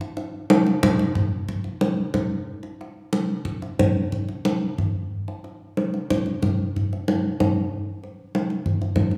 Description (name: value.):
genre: gamelan.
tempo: 91 BPM.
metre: 4/4.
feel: straight.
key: none.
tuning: none.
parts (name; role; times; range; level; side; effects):
kendang; percussion; 0.0-9.2 s; none; -24 LUFS; equal; none.
room: wet recital hall reverb, RT60 1.3 s.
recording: none.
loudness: -24 LUFS.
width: mono.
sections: 0.0-9.2 A section.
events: none.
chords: none.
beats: 0.49 | 1.15 1.81 2.47 3.12 | 3.78 4.44 5.10 5.76 | 6.42 7.07 7.71 8.34 | 8.95.